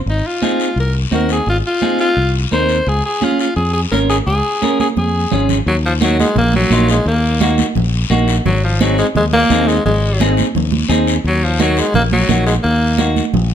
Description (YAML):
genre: latin, cumbia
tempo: 172 BPM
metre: 4/4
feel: straight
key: unclear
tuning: A4 = 441 Hz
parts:
  - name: raspy alto saxophone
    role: melody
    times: 0.1-13.1 s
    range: F3 to C5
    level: -17 LUFS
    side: left 1 dB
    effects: none
  - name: fingered electric bass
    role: bass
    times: 0.1-13.5 s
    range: Ab1 to F2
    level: -16 LUFS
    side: left 1 dB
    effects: none
  - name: congas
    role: percussion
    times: 0.1-13.5 s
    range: none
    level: -20 LUFS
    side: right 5 dB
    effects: none
  - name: guiro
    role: percussion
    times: 0.1-13.5 s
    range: none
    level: -26 LUFS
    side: left 8 dB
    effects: none
  - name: clean electric guitar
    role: accompaniment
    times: 0.4-13.2 s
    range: Bb3 to Bb4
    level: -19 LUFS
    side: right 1 dB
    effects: none
room: moderate large studio reverb, RT60 0.9 s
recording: none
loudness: -12 LUFS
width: side -9 dB against mid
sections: 0.0-5.7 A section; 5.7-13.5 B section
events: drum fill 4.8-5.7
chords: 0.1 Ab; 2.9 Db; 5.7 Ebm; 8.5 Ab; 11.2 Ebm